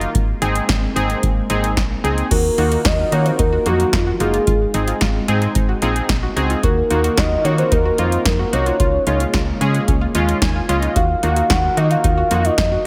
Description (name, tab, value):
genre	synth-pop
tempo	111 BPM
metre	4/4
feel	straight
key	Eb dorian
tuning	A4 = 440 Hz
part	warm analog keys	accompaniment	0.0-12.5 s	Ab3 to Ab5	-25 LUFS	equal	chorus
part	chorused pulse-width pad	sustained chords	0.0-12.9 s	Db3 to Bb4	-29 LUFS	equal	none
part	solid FM bass	bass	0.0-12.8 s	Gb1 to Eb3	-23 LUFS	equal	none
part	electro analog drum machine	drums	0.0-12.7 s	crash cymbal, hi-hat, kick drum, snare drum	-22 LUFS	equal	gated reverb
part	soft octave-layered synth lead	melody	2.3-12.9 s	F4 to Gb5	-22 LUFS	equal	chorus, digital delay
part	analog pluck	arpeggios	2.3-12.8 s	Db4 to Gb4	-31 LUFS	equal	chorus, digital delay
room	light reverb, digital ambience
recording	none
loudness	-17 LUFS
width	mono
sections	0.0-2.3 A section; 2.3-12.9 B section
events	synth keys fill 10.1-11.0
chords	0.1 Abadd9; 2.3 Ebmadd9; 4.5 Ab; 6.6 Ebmadd9; 8.8 Db6; 11.0 Ebmadd9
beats	| 0.15 0.69 1.23 1.77 | 2.31 2.85 3.39 3.93 | 4.47 5.01 5.55 6.09 | 6.63 7.18 7.72 8.26 | 8.80 9.34 9.88 10.42 | 10.96 11.50 12.04 12.58